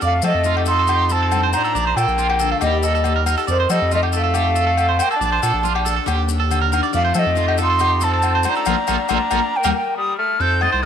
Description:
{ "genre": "highlife guitar band", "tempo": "139 BPM", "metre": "4/4", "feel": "straight", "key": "F mixolydian", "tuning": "A4 = 440 Hz", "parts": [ { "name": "mellow silver concert flute", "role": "melody", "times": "0.0-10.9 s", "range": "C5 to A6", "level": "-20 LUFS", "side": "right 1 dB", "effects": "none" }, { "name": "picked steel-string acoustic guitar", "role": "accompaniment", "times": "0.0-10.9 s", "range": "F2 to A4", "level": "-28 LUFS", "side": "left 11 dB", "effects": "none" }, { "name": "electric guitar at the edge of break-up", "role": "arpeggios", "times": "0.0-10.9 s", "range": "Eb4 to Eb5", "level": "-23 LUFS", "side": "right 11 dB", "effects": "harmonic tremolo, tape echo" }, { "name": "saturated sub bass", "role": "bass", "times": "0.0-10.9 s", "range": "Bb1 to F3", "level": "-21 LUFS", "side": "equal", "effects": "none" }, { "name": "maracas", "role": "percussion", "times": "0.0-9.7 s", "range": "none", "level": "-32 LUFS", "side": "left 15 dB", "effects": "none" }, { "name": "bright tenor saxophone", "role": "second line", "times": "0.1-10.9 s", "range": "Eb3 to Eb4", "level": "-27 LUFS", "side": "left 10 dB", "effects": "none" }, { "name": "agogo bells", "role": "percussion", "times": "0.2-10.7 s", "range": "none", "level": "-27 LUFS", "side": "left 13 dB", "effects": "none" } ], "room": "light reverb, studio reverb", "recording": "1960s-style stereo with parts hard left and right", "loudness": "-16 LUFS", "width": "side -8 dB against mid", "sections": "0.0-10.4 A section", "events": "band accent 8.7-10.4", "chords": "0.0 F7; 1.8 Bbmaj7; 2.6 Eb; 3.5 F7; 5.2 Bbmaj7; 6.1 Ebmaj7; 6.9 F7; 8.7 Bbmaj7; 9.5 Eb" }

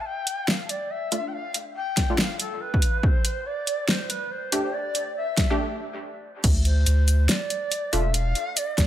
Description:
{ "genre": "deep dubstep", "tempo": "141 BPM", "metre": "4/4", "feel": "swing 61% on 16ths, half-time", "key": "D dorian", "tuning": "A4 = 437 Hz", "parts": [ { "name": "bright reedy long shakuhachi", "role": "melody", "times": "0.0-8.9 s", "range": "A4 to A5", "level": "-30 LUFS", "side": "equal", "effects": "low-pass filter, dub echo" }, { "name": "deep house drum kit", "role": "drums", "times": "0.3-8.9 s", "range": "crash cymbal, hi-hat, shaker, snare drum", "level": "-25 LUFS", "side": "equal", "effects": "overdrive" }, { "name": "filtered dub chord stab", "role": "stabs", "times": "1.1-8.9 s", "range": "A3 to G4", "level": "-30 LUFS", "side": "equal", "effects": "chorus, dub echo" }, { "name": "electronic kick drum", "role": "drums", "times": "2.0-8.9 s", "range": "none", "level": "-22 LUFS", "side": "equal", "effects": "overdrive" }, { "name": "soft dub sub bass", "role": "bass", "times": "6.4-8.9 s", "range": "E1 to D2", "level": "-20 LUFS", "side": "equal", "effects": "none" } ], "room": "light reverb", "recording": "none", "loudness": "-22 LUFS", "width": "side -12 dB against mid", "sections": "0.0-6.4 A section; 6.4-8.9 B section", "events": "build-up 0.0-6.4; filter sweep on shakuhachi 0.0-6.4; break 5.6-6.4; drop 6.4-8.9", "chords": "0.0 Dm; 3.0 Gsus2; 6.4 Dm" }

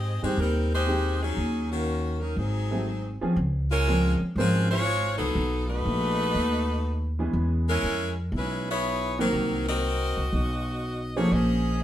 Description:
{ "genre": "jazz, big band swing", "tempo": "121 BPM", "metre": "4/4", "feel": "swing 69% on 8ths", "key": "Ab major, Db major from 3.4 s", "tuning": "A4 = 440 Hz", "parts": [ { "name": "clear saxophone section", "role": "melody", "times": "0.0-11.8 s", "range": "Eb3 to Eb5", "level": "-28 LUFS", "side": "left 1 dB", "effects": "none" }, { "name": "upright bass", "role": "bass", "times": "0.0-11.8 s", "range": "Ab1 to Ab2", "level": "-27 LUFS", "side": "equal", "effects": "none" }, { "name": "clear baby grand piano", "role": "accompaniment", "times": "0.2-11.8 s", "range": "Eb3 to C5", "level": "-27 LUFS", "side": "equal", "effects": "none" } ], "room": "wet studio reverb, RT60 0.6 s", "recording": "heard from further back in the room", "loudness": "-24 LUFS", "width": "side -12 dB against mid", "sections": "0.0-3.4 A section; 3.4-11.8 B section", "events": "none", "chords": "0.0 Abmaj7; 1.4 Ebm7; 2.4 Ab7b9; 3.4 Dbmaj7; 5.4 Cb7; 7.3 E6; 9.3 Cm7b5; 10.3 Cbadd9; 11.3 Bbm9" }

